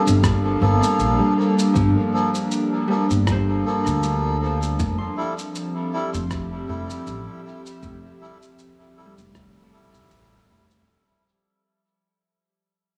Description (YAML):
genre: ambient dub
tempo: 79 BPM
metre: 4/4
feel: swing 56% on 16ths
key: unclear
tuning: A4 = 440 Hz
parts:
  - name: airy breathy pad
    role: sustained chords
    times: 0.0-10.9 s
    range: F3 to F5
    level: -27 LUFS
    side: equal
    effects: chorus
  - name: melodica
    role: stabs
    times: 0.0-10.7 s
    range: F3 to A4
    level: -28 LUFS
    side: equal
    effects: dub echo
  - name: upright bass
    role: bass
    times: 0.1-10.8 s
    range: F1 to D2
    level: -25 LUFS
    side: equal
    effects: none
  - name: electronic shaker and rim click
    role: drums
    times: 0.1-10.8 s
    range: none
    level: -34 LUFS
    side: equal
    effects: small room ambience, dub echo
  - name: electronic kick drum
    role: drums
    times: 0.2-9.5 s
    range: none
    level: -27 LUFS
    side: equal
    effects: small room ambience
  - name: Celtic harp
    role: arpeggios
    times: 1.2-10.9 s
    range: F3 to C6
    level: -30 LUFS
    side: equal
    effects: tape echo
room: moderate echo chamber reverb, RT60 2.3 s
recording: studio ambience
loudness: -21 LUFS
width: mono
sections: 0.0-10.9 A section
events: fade-out 0.0-10.9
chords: 0.0 Gm9; 4.8 Fmaj9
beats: 0.24 1.00 | 1.76 2.52 3.27 4.03 | 4.79 5.55 6.31 7.07 | 7.83 8.59 9.35 10.11